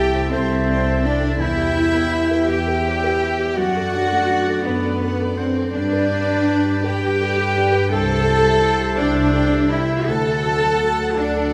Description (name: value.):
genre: cinematic, emotional film score for orchestra.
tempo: 55 BPM (dotted quarters).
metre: 6/8.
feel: rubato.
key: unclear.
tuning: A4 = 441 Hz.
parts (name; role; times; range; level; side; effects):
clear studio violin section; melody; 0.0-11.5 s; B4 to A5; -38 LUFS; equal; none.
clear clarinet; second line; 0.0-11.5 s; A4 to E5; -32 LUFS; equal; none.
concert flute; second line; 0.0-11.5 s; B4 to A5; -30 LUFS; equal; none.
dark chamber violin section; second line; 0.0-11.5 s; B4 to A5; -31 LUFS; equal; none.
warm oboe; second line; 0.0-11.5 s; E5 to A5; -32 LUFS; equal; none.
felt-muted upright piano; accompaniment; 0.0-11.5 s; C2 to D5; -29 LUFS; equal; none.
rich studio viola section; accompaniment; 0.0-11.5 s; B3 to A4; -29 LUFS; equal; none.
warm French horn section; sustained chords; 0.0-11.5 s; B3 to A4; -28 LUFS; equal; none.
concert harp; arpeggios; 0.0-11.5 s; E2 to C6; -35 LUFS; equal; none.
dark chamber cello section; bass; 0.0-11.5 s; B3 to A4; -25 LUFS; equal; none.
warm studio double bass section; bass; 0.0-11.5 s; C2 to G2; -26 LUFS; equal; none.
room: wet scoring stage reverb, RT60 1.9 s.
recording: none.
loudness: -19 LUFS.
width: mono.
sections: 0.0-11.5 A section.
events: none.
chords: 0.0 C6; 1.4 Em; 3.6 D/F#; 5.7 G; 7.9 C6; 10.1 D.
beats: 0.31 | 1.40 2.49 | 3.58 4.65 | 5.73 6.84 | 7.92 8.99 | 10.10 11.18.